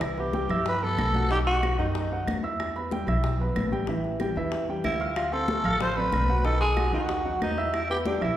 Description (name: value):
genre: Afro-Cuban jazz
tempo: 187 BPM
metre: 4/4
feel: straight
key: unclear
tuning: A4 = 440 Hz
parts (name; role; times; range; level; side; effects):
- growling tenor saxophone; melody; 0.0-2.4, 4.8-8.4 s; D4 to C5; -27 LUFS; equal; none
- upright bass; bass; 0.0-8.4 s; A1 to G2; -30 LUFS; equal; none
- bongos; percussion; 0.0-8.4 s; none; -36 LUFS; left 4 dB; none
- claves; percussion; 0.0-8.4 s; none; -40 LUFS; right 4 dB; none
- congas; percussion; 0.0-8.4 s; none; -33 LUFS; left 1 dB; none
- warm baby grand piano; accompaniment; 0.2-8.4 s; D#3 to F6; -30 LUFS; right 1 dB; none
room: wet recital hall reverb, RT60 1.5 s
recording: recorded in a church or concert hall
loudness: -24 LUFS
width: side -12 dB against mid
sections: 0.0-8.4 A section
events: none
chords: 0.0 Cmaj7; 1.3 B; 2.6 Em; 3.9 A5; 5.2 Dm7; 6.5 B; 7.7 Em